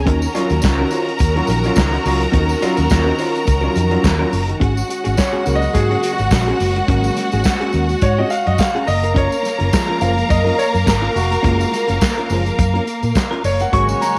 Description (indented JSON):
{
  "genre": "disco",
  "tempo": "105 BPM",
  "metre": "4/4",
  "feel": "swing 56% on 16ths",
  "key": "unclear",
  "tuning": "A4 = 440 Hz",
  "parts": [
    { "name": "clear studio string section", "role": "second line", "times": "0.0-14.2 s", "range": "Gb4 to Db6", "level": "-25 LUFS", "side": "equal", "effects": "none" },
    { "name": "clear studio string section", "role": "sustained chords", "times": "0.0-14.2 s", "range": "Eb3 to F5", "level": "-27 LUFS", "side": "equal", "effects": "none" },
    { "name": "vintage muted fingered electric bass", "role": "bass", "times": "0.0-13.9 s", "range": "F1 to Bb2", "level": "-21 LUFS", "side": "equal", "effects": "none" },
    { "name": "clean electric guitar", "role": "accompaniment", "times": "0.1-14.1 s", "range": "Ab3 to C5", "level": "-27 LUFS", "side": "equal", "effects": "lush chorus" },
    { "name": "warm grand piano", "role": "accompaniment", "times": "0.1-14.2 s", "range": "Db3 to Db6", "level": "-24 LUFS", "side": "equal", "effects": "none" },
    { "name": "warm soul drum kit", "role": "drums", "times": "0.1-14.2 s", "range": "handclaps, hi-hat, kick drum, snare drum", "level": "-22 LUFS", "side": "equal", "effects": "none" },
    { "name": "tambourine", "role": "percussion", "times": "0.2-14.2 s", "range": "none", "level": "-36 LUFS", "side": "equal", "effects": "none" },
    { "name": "clear horn section", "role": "stabs", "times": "13.7-14.2 s", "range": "Ab3 to Db5", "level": "-23 LUFS", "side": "equal", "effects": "none" }
  ],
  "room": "light reverb, studio reverb",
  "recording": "none",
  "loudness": "-17 LUFS",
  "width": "mono",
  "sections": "0.0-4.6 A section; 4.6-14.2 B section",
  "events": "grand piano solo 4.6-14.2",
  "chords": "0.1 Ebm7; 4.6 Ab7sus4; 8.9 Gbmaj7"
}